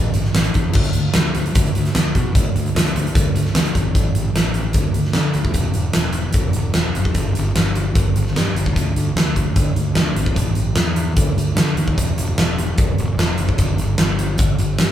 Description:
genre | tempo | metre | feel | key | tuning
classic rock | 149 BPM | 4/4 | straight | unclear | A4 = 440 Hz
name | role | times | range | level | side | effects
fuzz fingered electric bass | bass | 0.0-14.9 s | E1 to D3 | -21 LUFS | equal | overdrive
huge arena drum kit | drums | 0.1-14.9 s | crash cymbal, hi-hat, kick drum, snare drum | -17 LUFS | equal | none
room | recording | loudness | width
light reverb | band playing live in one room | -16 LUFS | side -11 dB against mid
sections
0.0-3.9 A section; 3.9-14.9 B section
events
none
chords
none

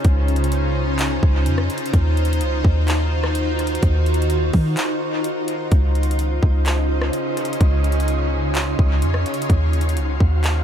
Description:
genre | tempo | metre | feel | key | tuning
hip hop, atmospheric cloud-rap | 127 BPM | 4/4 | half-time | Eb dorian | A4 = 440 Hz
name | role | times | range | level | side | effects
shimmering ambient pad | sustained chords | 0.0-10.6 s | Db3 to F5 | -23 LUFS | equal | chorus, built-in reverb, sidechain pumping
soft 808-style bass | bass | 0.0-10.6 s | Db2 to Eb3 | -19 LUFS | equal | none
trap drum kit | drums | 0.0-10.6 s | handclaps, hi-hat, kick drum, rim click | -21 LUFS | equal | tape echo
wind-like tuned noise texture | texture | 6.3-10.6 s | F4 to C6 | -30 LUFS | right 5 dB | built-in reverb
room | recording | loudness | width
digital ambience | echo-heavy mix | -17 LUFS | side -9 dB against mid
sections
0.0-10.6 A section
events
break 4.8-5.7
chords
0.0 Dbmaj9; 1.9 Ebm69; 5.7 Dbmaj9; 9.5 Ebm69

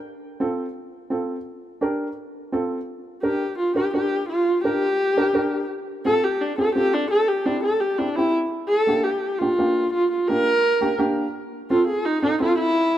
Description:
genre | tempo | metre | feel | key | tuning
latin | 170 BPM | 4/4 | straight | F major | A4 = 440 Hz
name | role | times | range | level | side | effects
dark upright piano | accompaniment | 0.4-12.7 s | Bb3 to Bb4 | -25 LUFS | right 1 dB | none
dark viola | melody | 3.2-13.0 s | D4 to Bb4 | -20 LUFS | equal | none
room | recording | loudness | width
moderate plate reverb, RT60 3.5 s | minimal, uncompressed stereo recording | -20 LUFS | side -12 dB against mid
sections
0.0-2.9 A section; 2.9-13.0 B section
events
viola solo 2.9-13.0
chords
0.0 F; 1.5 Gm; 2.2 F; 2.9 Gm; 5.7 F; 7.1 C; 8.5 Gm; 11.3 F

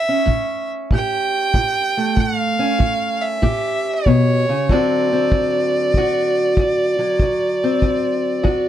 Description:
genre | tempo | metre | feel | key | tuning
acoustic country blues, solo or duo | 95 BPM | 4/4 | swing 66% on 8ths | unclear | A4 = 440 Hz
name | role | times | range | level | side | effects
rich fiddle | melody | 0.0-8.7 s | C#5 to G5 | -20 LUFS | right 2 dB | none
fingerpicked steel-string acoustic guitar | accompaniment | 0.0-8.7 s | D2 to G4 | -19 LUFS | left 1 dB | none
kick drum | drums | 0.3-8.6 s | none | -18 LUFS | equal | none
room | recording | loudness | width
light reverb | dark, warm production | -16 LUFS | side -11 dB against mid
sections
0.0-8.7 A section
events
none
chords
0.0 A7; 4.7 D7

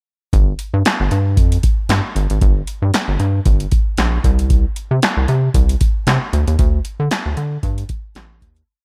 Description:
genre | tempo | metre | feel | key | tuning
early-eighties boogie funk | 115 BPM | 4/4 | swing 56% on 16ths | unclear | A4 = 443 Hz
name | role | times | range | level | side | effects
rubbery square bass | bass | 0.3-8.6 s | G1 to D3 | -18 LUFS | equal | none
electro analog drum machine | drums | 0.3-8.7 s | handclaps, hi-hat, kick drum, snare drum | -19 LUFS | equal | gated reverb
room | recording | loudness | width
little or no reverb | none | -17 LUFS | mono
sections
0.3-8.7 breakdown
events
fade-out 6.6-8.7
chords
none

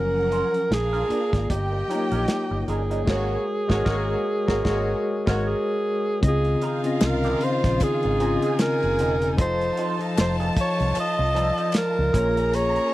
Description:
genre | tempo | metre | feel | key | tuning
lush 1970s-style soul | 76 BPM | 4/4 | swing 58% on 16ths | Db major | A4 = 439 Hz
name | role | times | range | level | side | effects
warm alto saxophone | melody | 0.0-12.9 s | G4 to Eb5 | -25 LUFS | right 1 dB | none
warm studio violin section | second line | 0.0-12.9 s | Bb3 to Bb5 | -33 LUFS | right 2 dB | none
tine electric piano | accompaniment | 0.0-12.9 s | Db3 to A5 | -27 LUFS | left 2 dB | medium tremolo
vintage muted fingered electric bass | bass | 0.0-12.8 s | Fb1 to Db2 | -26 LUFS | equal | none
electric guitar through a small old amp | riff | 0.3-12.9 s | F3 to C5 | -34 LUFS | right 4 dB | wah
warm soul drum kit | drums | 0.3-12.9 s | crash cymbal, hi-hat, kick drum, snare drum | -23 LUFS | equal | none
warm studio string section | sustained chords | 6.2-12.9 s | Eb3 to A5 | -33 LUFS | left 1 dB | none
group handclap | percussion | 7.0-11.9 s | none | -37 LUFS | left 14 dB | none
room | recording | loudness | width
small room ambience | dry, close 1970s-style studio recording | -20 LUFS | side -16 dB against mid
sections
0.0-6.2 A section; 6.2-12.9 B section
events
band accent 3.1-6.2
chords
0.0 Gbmaj7; 0.7 Bb7; 1.5 Eb7/G; 3.1 Ab9sus4; 6.2 Dbmaj9; 9.4 F7; 12.1 Bbm7

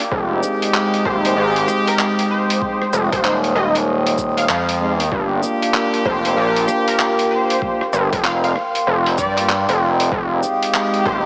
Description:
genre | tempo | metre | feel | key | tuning
glitch hop | 96 BPM | 4/4 | swing 62% on 16ths | F dorian | A4 = 437 Hz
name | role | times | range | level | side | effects
dark analog pad | sustained chords | 0.0-11.3 s | Ab3 to Eb6 | -25 LUFS | equal | chorus, sidechain pumping
boom bap sampler-style drum kit | drums | 0.0-11.0 s | handclaps, hi-hat, rim click, shaker | -26 LUFS | equal | none
mellow horn section | stabs | 0.1-11.3 s | Ab3 to G4 | -24 LUFS | equal | sidechain pumping, analog delay
gritty driven synth bass | bass | 0.1-11.3 s | Eb1 to G2 | -21 LUFS | equal | distortion, tube saturation
electronic kick drum | drums | 0.1-11.2 s | none | -32 LUFS | equal | none
plucky unison lead | melody | 1.1-11.2 s | Bb4 to F5 | -28 LUFS | equal | ensemble chorus, analog delay
room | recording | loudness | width
wet huge ambient reverb, RT60 4.8 s | dreamy mix soaked in reverb, small speaker sound | -18 LUFS | mono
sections
0.0-11.3 A section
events
none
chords
0.1 Fm9; 5.1 Gm7; 10.1 Fm9

